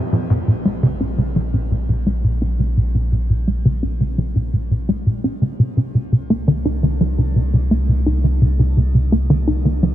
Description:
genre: ambient, sequencer-driven space music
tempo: 85 BPM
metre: 4/4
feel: straight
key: Bb minor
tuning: A4 = 438 Hz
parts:
  - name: tight sequencer bass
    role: riff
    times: 0.0-9.9 s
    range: Bb2 to Eb4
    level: -17 LUFS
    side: equal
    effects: wide subtle chorus, vintage 12-bit sampler grit, tape echo
  - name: warm sub bass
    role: bass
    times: 0.0-9.9 s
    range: Bb1 to C2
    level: -20 LUFS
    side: equal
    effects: none
room: light reverb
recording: none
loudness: -16 LUFS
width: side -13 dB against mid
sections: 0.0-9.9 A section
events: filter sweep on analog synth bass 0.0-9.9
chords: 0.0 Bbm; 5.6 Cm

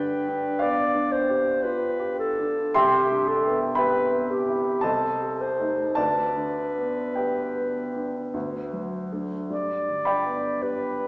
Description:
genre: classical, romantic duo for clarinet and grand piano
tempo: 50-60 BPM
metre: 3/4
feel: rubato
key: G major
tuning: A4 = 440 Hz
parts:
  - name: mellow clarinet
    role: melody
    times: 0.0-11.1 s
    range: G4 to D5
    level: -25 LUFS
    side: equal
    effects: none
  - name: warm grand piano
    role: accompaniment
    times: 0.0-11.1 s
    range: C2 to C6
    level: -25 LUFS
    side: equal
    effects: none
room: wet recital hall reverb, RT60 1.7 s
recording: heard from further back in the room, small speaker sound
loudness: -22 LUFS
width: side -24 dB against mid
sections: 0.0-11.1 A section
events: none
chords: 0.0 G7; 2.8 Cmaj7; 4.8 Am7b5/C; 6.0 G/D; 8.3 D; 9.5 G

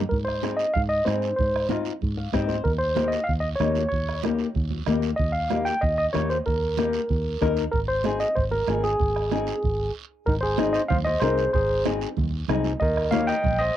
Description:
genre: latin, cumbia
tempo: 189 BPM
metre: 4/4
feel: straight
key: Ab major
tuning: A4 = 440 Hz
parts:
  - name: fingered electric bass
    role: bass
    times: 0.0-13.7 s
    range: Ab1 to Ab2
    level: -29 LUFS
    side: equal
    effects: none
  - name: congas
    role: percussion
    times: 0.0-13.6 s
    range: none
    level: -34 LUFS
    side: right 12 dB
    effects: none
  - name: overdriven tine electric piano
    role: melody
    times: 0.1-13.8 s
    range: Eb4 to G5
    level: -24 LUFS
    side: right 1 dB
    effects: cassette tape, plate reverb
  - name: bombo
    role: percussion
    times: 0.1-13.6 s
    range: none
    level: -29 LUFS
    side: right 2 dB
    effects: none
  - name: guiro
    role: percussion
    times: 0.1-13.8 s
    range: none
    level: -42 LUFS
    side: right 11 dB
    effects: none
  - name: flamenco guitar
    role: accompaniment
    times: 0.4-13.3 s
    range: Bb3 to F5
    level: -27 LUFS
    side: left 7 dB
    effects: cassette tape, plate reverb
room: wet booth ambience, RT60 0.2 s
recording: home recording on cassette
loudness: -22 LUFS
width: side -12 dB against mid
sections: 0.1-10.3 A section; 10.3-13.8 B section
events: nylon-string guitar fill 2.0-2.6; stop 9.9-10.3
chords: 0.1 Ab; 2.6 Eb; 7.7 Ab; 12.8 Eb

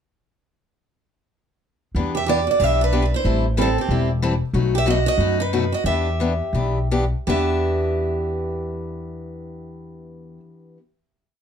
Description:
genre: acoustic string swing (jazz manouche)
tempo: 158-186 BPM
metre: 4/4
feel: swing 61% on 8ths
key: E minor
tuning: A4 = 440 Hz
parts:
  - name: upright bass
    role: bass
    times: 1.9-10.4 s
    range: E1 to F#2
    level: -23 LUFS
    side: equal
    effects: none
  - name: picked steel-string acoustic guitar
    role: accompaniment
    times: 2.0-10.8 s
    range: B2 to A4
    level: -25 LUFS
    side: left 3 dB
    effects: none
  - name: picked steel-string acoustic guitar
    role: second line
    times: 2.1-10.4 s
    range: C4 to G4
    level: -28 LUFS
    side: right 8 dB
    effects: none
  - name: picked steel-string acoustic guitar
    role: melody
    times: 2.2-10.4 s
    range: G4 to E5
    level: -23 LUFS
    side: right 2 dB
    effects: plate reverb
room: light reverb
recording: dark, warm production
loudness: -18 LUFS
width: side -8 dB against mid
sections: 1.9-7.3 A section; 7.3-10.3 final chord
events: slowing down 4.5-7.3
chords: 1.9 Em7; 3.2 Am7; 4.5 B7; 5.9 Em7

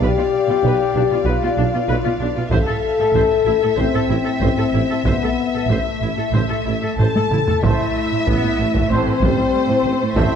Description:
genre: cinematic, epic orchestral film score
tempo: 95 BPM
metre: 4/4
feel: straight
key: A minor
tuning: A4 = 439 Hz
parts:
  - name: warm symphonic violin section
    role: melody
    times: 0.0-10.4 s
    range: C5 to A5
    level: -31 LUFS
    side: left 4 dB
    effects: none
  - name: dark symphonic violin section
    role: second line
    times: 0.0-10.4 s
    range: C5 to A5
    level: -25 LUFS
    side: left 4 dB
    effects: none
  - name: rich symphonic viola section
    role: accompaniment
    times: 0.0-10.4 s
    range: E3 to C5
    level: -27 LUFS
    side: right 1 dB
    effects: none
  - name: dark French horn section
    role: sustained chords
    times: 0.0-10.4 s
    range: A3 to A4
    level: -20 LUFS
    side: left 5 dB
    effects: none
  - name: dark symphonic cello section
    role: bass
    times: 0.0-10.2 s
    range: A2 to B2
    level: -25 LUFS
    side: right 4 dB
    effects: none
  - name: warm studio double bass section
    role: bass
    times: 0.0-10.2 s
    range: A1 to B1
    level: -24 LUFS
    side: right 4 dB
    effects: none
  - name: warm tuba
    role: bass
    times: 0.0-10.2 s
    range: A1 to B1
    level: -27 LUFS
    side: right 4 dB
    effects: none
  - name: taiko ensemble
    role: drums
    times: 2.5-10.4 s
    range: none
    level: -22 LUFS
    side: equal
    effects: none
  - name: warm trombone section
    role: sustained chords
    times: 7.6-10.4 s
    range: A2 to A3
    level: -30 LUFS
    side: right 5 dB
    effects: none
  - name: warm trumpet section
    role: stabs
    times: 7.7-10.4 s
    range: C5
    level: -28 LUFS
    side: right 3 dB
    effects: none
room: moderate concert hall reverb, RT60 2.1 s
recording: dark, warm production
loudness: -16 LUFS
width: side -7 dB against mid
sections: 0.0-7.6 A section; 7.6-10.4 B section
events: drum fill 7.0-7.6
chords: 0.0 Bdim; 2.5 Am

